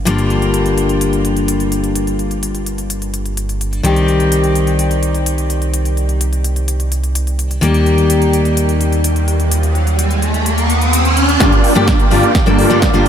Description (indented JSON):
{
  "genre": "EDM, festival progressive house",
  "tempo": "127 BPM",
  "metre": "4/4",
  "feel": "straight",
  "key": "G minor",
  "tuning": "A4 = 440 Hz",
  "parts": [
    { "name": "picked steel-string acoustic guitar", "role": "accompaniment", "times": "0.0-13.1 s", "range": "G2 to A4", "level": "-16 LUFS", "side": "left 2 dB", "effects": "sidechain pumping, analog delay" },
    { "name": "fat analog bass", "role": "bass", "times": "0.0-11.4 s", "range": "G1 to Eb2", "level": "-17 LUFS", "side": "right 1 dB", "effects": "sidechain pumping" },
    { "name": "big-room dance drum kit", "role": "drums", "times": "0.1-13.1 s", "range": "hi-hat, snare drum", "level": "-23 LUFS", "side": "left 1 dB", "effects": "overdrive" },
    { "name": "riser", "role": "sound effects", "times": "9.3-13.1 s", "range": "none", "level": "-18 LUFS", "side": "equal", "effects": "none" },
    { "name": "big supersaw lead", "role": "riff", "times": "11.4-13.1 s", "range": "Bb3 to D5", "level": "-14 LUFS", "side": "right 1 dB", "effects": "phaser, sidechain pumping, low-pass filter, analog delay" },
    { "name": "electronic kick drum", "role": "drums", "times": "11.4-12.9 s", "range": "none", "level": "-14 LUFS", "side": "right 1 dB", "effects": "none" }
  ],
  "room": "moderate huge ambient reverb, RT60 7.8 s",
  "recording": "dreamy mix soaked in reverb",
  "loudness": "-12 LUFS",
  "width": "side -9 dB against mid",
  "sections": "0.0-11.4 A section; 11.4-13.1 B section",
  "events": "riser 9.3-11.4, 11.4-13.1; build-up 11.4-13.1; drum fill 11.4-13.1; filter sweep on supersaw synth 11.4-13.1",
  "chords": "0.0 Gm7; 3.8 Cm; 7.6 Eb; 11.4 Gm7"
}